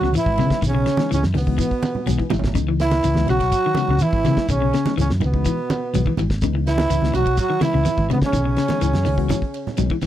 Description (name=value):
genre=afrobeat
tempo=124 BPM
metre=4/4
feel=straight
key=C# minor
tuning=A4 = 440 Hz
part: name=warm trombone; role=melody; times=0.0-10.0 s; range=B3 to F#4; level=-23 LUFS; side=right 1 dB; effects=none
part: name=growling tenor saxophone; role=second line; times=0.0-10.0 s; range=B3 to F#4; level=-32 LUFS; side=right 3 dB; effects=none
part: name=warm bass trombone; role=second line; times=0.0-10.0 s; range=B2 to F#3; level=-29 LUFS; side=right 10 dB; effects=none
part: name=reed electric piano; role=accompaniment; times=0.0-10.0 s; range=E3 to G#5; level=-28 LUFS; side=left 14 dB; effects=overdrive
part: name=electric guitar at the edge of break-up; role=arpeggios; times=0.0-10.1 s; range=C#3 to F#3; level=-25 LUFS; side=left 6 dB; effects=none
part: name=hollow-body short-scale fingered electric bass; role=bass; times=0.0-10.1 s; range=G#1 to C#3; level=-21 LUFS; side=equal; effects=none
part: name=damped 70s drum kit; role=drums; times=0.0-10.1 s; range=hi-hat, kick drum, ride cymbal, snare drum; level=-26 LUFS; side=equal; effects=none
part: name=congas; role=percussion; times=0.0-10.1 s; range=none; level=-25 LUFS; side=right 4 dB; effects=none
part: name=shekere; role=percussion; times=0.2-10.1 s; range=none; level=-29 LUFS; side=right 2 dB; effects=none
room=little or no reverb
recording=dry, close 1970s-style studio recording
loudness=-17 LUFS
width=side -12 dB against mid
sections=0.0-10.1 A section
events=reed electric piano fill 1.8-2.6; drum fill 2.1-2.6, 9.3-10.1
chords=0.0 C#m7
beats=0.15 | 0.63 1.11 1.59 2.07 | 2.56 3.04 3.52 4.00 | 4.48 4.96 5.45 5.93 | 6.41 6.89 7.38 7.86 | 8.34 8.82 9.30 9.79